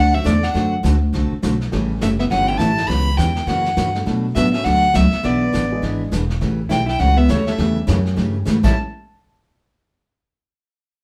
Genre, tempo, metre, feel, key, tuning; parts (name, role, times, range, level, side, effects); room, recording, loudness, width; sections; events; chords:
country, western swing; 205 BPM; 4/4; swing 60% on 8ths; A mixolydian; A4 = 440 Hz
rich fiddle; melody; 0.0-8.8 s; C#5 to B5; -23 LUFS; equal
hollow-body jazz guitar; second line; 0.0-8.8 s; A3 to G4; -26 LUFS; equal
picked steel-string acoustic guitar; accompaniment; 0.0-8.7 s; A2 to A4; -24 LUFS; equal
upright bass; bass; 0.0-8.7 s; E1 to B2; -22 LUFS; equal
dark upright piano; accompaniment; 0.1-8.7 s; F#3 to A4; -32 LUFS; equal
vintage brush drum kit; drums; 0.3-8.7 s; brushed snare drum, crash cymbal, hi-hat, kick drum, snare drum; -28 LUFS; equal
wet studio ambience, RT60 0.5 s; band playing live in one room; -18 LUFS; mono
0.0-8.8 A section; 8.8-9.9 B section
0.0 D7; 1.7 A7; 2.9 C#m7b5; 3.5 F#7b9; 4.1 Bm7; 5.2 E7; 6.4 A7; 8.6 A9; 8.8 N.C.